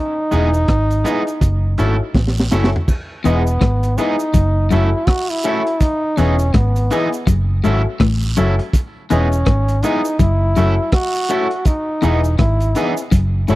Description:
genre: roots reggae.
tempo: 82 BPM.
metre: 4/4.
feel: swing 60% on 16ths.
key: E major.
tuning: A4 = 440 Hz.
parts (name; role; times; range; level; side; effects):
bright trombone; melody; 0.0-13.1 s; B3 to F#4; -20 LUFS; equal; tape echo.
electric guitar at the edge of break-up; accompaniment; 0.3-13.6 s; E3 to A4; -24 LUFS; right 3 dB; tape echo.
dark upright piano; stabs; 0.3-13.6 s; E4 to E5; -22 LUFS; left 6 dB; none.
vintage muted fingered electric bass; bass; 0.3-13.6 s; E1 to A1; -16 LUFS; equal; none.
crunchy breakbeat drum kit; drums; 0.3-13.6 s; crash cymbal, hi-hat, kick drum, rim click, snare drum, toms; -16 LUFS; equal; none.
cabasa and guiro; percussion; 0.3-13.6 s; none; -31 LUFS; right 5 dB; none.
clean electric guitar; riff; 3.2-13.6 s; E2 to A2; -22 LUFS; left 5 dB; spring reverb.
room: little or no reverb.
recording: dry, close 1970s-style studio recording.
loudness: -14 LUFS.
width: side -17 dB against mid.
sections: 0.0-2.9 A section; 2.9-13.6 B section.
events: drum fill 2.1-2.9.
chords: 0.0 Emaj7; 1.4 F#m7; 2.9 Emaj7; 4.3 F#m7; 5.8 Emaj7; 7.3 F#m7; 8.7 Emaj7; 10.2 F#m7; 11.7 Emaj7.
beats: 0.69 1.42 2.15 | 2.88 3.61 4.35 5.08 | 5.81 6.54 7.27 8.00 | 8.74 9.47 10.20 10.93 | 11.66 12.39 13.12.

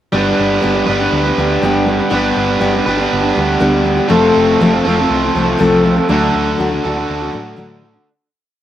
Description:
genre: rock.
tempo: 120 BPM.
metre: 4/4.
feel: straight.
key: G major.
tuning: A4 = 441 Hz.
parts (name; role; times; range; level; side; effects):
picked steel-string acoustic guitar; accompaniment; 0.1-8.1 s; F2 to A4; -15 LUFS; left 2 dB; none.
overdriven electric guitar; riff; 0.1-8.1 s; D3 to B4; -15 LUFS; right 2 dB; slapback echo.
deep dub picked electric bass; bass; 0.1-8.0 s; F1 to A2; -23 LUFS; right 1 dB; none.
room: light reverb.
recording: recorded outdoors, with no room sound.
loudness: -12 LUFS.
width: side -11 dB against mid.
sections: 0.1-8.1 verse.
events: fade-out 6.1-8.1.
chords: 0.1 G; 4.1 F; 6.1 D.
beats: | 0.14 0.63 1.13 1.62 | 2.12 2.62 3.11 3.61 | 4.11 4.61 5.11 5.61 | 6.11 6.61 7.10 7.60.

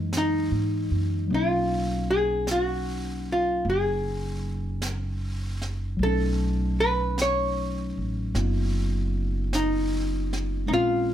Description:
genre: jazz ballad.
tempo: 51 BPM.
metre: 4/4.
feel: swing 68% on 8ths.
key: unclear.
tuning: A4 = 440 Hz.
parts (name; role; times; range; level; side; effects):
archtop guitar, miked and amplified; melody; 0.0-11.1 s; Eb4 to Db5; -25 LUFS; equal; none.
tine electric piano; accompaniment; 0.0-11.1 s; Fb3 to F5; -31 LUFS; left 2 dB; overdrive.
upright bass; bass; 0.0-11.1 s; F#1 to Ab2; -28 LUFS; equal; none.
jazz brush drum kit; drums; 0.1-11.1 s; brushed snare drum, hi-hat, snare drum; -38 LUFS; right 2 dB; none.
room: little or no reverb.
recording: none.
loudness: -24 LUFS.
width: side -11 dB against mid.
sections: 0.0-11.1 A section.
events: none.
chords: 0.0 Gb13; 1.3 Bmaj9; 6.0 B9.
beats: 0.11 | 1.29 2.46 3.64 4.82 | 6.00 7.17 8.35 9.53 | 10.71.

